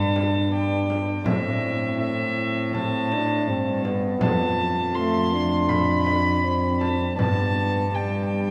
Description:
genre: classical, renaissance-style consort dance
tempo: 81 BPM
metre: 4/4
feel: straight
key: G mixolydian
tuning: A4 = 445 Hz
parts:
  - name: dark violin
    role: melody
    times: 0.0-8.5 s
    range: E5 to C6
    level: -29 LUFS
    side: equal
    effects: none
  - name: concert harp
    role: accompaniment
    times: 0.0-8.5 s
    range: F2 to D5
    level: -34 LUFS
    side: equal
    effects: none
  - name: mellow trombone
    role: accompaniment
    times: 0.0-8.5 s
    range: G3 to D4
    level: -28 LUFS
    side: equal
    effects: none
  - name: rich cello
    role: bass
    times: 0.0-8.5 s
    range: F2 to A2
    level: -29 LUFS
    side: equal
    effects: none
  - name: frame drum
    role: percussion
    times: 0.2-7.5 s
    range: none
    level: -34 LUFS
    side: equal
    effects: none
room: wet church reverb, RT60 3.6 s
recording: none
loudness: -23 LUFS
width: mono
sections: 0.0-8.5 A section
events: none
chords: 0.0 G; 1.3 Am; 4.2 F; 7.2 G

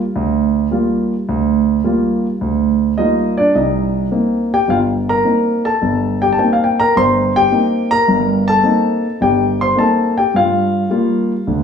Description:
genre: solo jazz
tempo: 106 BPM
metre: 4/4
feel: swing 69% on 8ths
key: unclear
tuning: A4 = 440 Hz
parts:
  - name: warm concert grand piano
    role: solo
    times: 0.2-11.6 s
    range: G1 to C6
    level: -13 LUFS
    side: equal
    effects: none
room: wet large studio reverb, RT60 1.2 s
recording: studio ambience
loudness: -13 LUFS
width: side -7 dB against mid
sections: 0.0-11.6 A section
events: none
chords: 0.0 Gm7; 3.5 Cm7; 10.3 Gm7

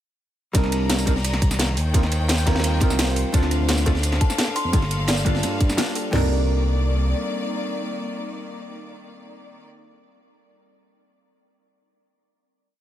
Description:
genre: liquid drum and bass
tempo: 172 BPM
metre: 4/4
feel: straight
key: C dorian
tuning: A4 = 439 Hz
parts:
  - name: vintage hollow-body jazz guitar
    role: accompaniment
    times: 0.5-9.9 s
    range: G3 to Bb4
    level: -28 LUFS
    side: equal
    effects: ping-pong delay
  - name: clear studio string section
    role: sustained chords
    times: 0.5-9.7 s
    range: Eb3 to Bb5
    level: -30 LUFS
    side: left 1 dB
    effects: sidechain pumping
  - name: smooth gliding synth bass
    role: bass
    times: 0.5-7.1 s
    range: G1 to G2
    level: -22 LUFS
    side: equal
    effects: none
  - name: crunchy breakbeat drum kit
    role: drums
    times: 0.5-6.0 s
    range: ride cymbal, snare drum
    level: -33 LUFS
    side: equal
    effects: high-pass filter on cymbals, high-pass filter on snare, high-pass filter on room
  - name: drum and bass drum kit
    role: drums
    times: 0.5-6.0 s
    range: hi-hat, snare drum, tambourine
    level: -25 LUFS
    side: equal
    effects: overdrive
  - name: garage drum kit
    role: drums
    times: 0.5-6.2 s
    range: crash cymbal, kick drum, snare drum, toms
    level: -21 LUFS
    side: equal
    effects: none
  - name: kalimba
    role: arpeggios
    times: 3.7-6.3 s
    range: A4 to C6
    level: -32 LUFS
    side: left 2 dB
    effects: ping-pong delay
room: little or no reverb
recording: none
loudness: -19 LUFS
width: side -12 dB against mid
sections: 0.5-6.1 drop; 6.1-8.9 final chord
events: drop 0.5-6.1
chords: 0.5 Cm9; 1.8 Eb6; 3.3 Dm7; 4.7 Gm9; 6.1 Cm9

